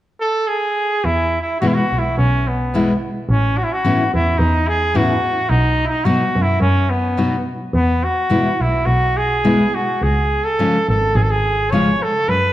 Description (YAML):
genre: mexican folk, mariachi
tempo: 107 BPM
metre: 4/4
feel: swing 53% on 8ths, rubato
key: E major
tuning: A4 = 442 Hz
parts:
  - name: clear trumpet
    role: melody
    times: 0.2-12.5 s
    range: B3 to C#5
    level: -18 LUFS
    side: equal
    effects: none
  - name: clear double bass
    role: bass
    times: 1.0-12.5 s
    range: G#1 to F#2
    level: -19 LUFS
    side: equal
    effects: none
  - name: nylon-string guitar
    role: accompaniment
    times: 1.6-11.9 s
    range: E2 to F#4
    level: -20 LUFS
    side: left 2 dB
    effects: none
room: wet recital hall reverb, RT60 1.8 s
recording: dark, warm production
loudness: -15 LUFS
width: side -14 dB against mid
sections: 0.0-1.0 A section; 1.0-12.5 B section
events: none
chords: 0.0 N.C.; 1.0 E; 3.3 Aadd9; 5.5 B; 7.7 E; 10.0 C#